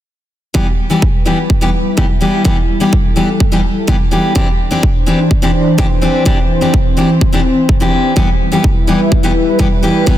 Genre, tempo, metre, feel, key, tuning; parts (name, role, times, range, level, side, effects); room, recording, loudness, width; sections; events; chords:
EDM, festival progressive house; 126 BPM; 4/4; straight; E minor; A4 = 440 Hz
fingerpicked steel-string acoustic guitar; accompaniment; 0.5-10.2 s; E3 to G4; -15 LUFS; left 2 dB; sidechain pumping, tape echo
lush unison pad; sustained chords; 1.4-10.2 s; E3 to C5; -17 LUFS; equal; chorus, sidechain pumping
electronic kick drum; drums; 0.5-10.2 s; -13 LUFS; equal
light reverb, small room ambience; dense, heavily limited modern master; -10 LUFS; side -12 dB against mid
0.5-10.2 A section
filter sweep on analog synth pad 0.5-10.2
0.5 Em; 4.4 Cadd9; 8.2 Em